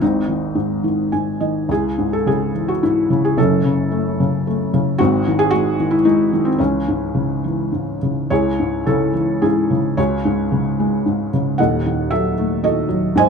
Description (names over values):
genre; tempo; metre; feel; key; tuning
classical, lyrical solo piano; 99-117 BPM; 3/4; rubato; C# harmonic minor; A4 = 440 Hz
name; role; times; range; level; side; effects
felt-muted upright piano; solo; 0.0-13.3 s; D#1 to G#5; -16 LUFS; equal; none
room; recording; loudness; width
light reverb; close, detailed microphones; -16 LUFS; side -6 dB against mid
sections
0.0-8.3 A section; 8.3-13.3 A section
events
felt piano fill 0.8-1.7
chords
0.0 G#; 1.7 C#m; 3.4 F#m; 5.0 G#; 6.6 C#m; 10.0 F#sus2/C#; 11.6 D#dim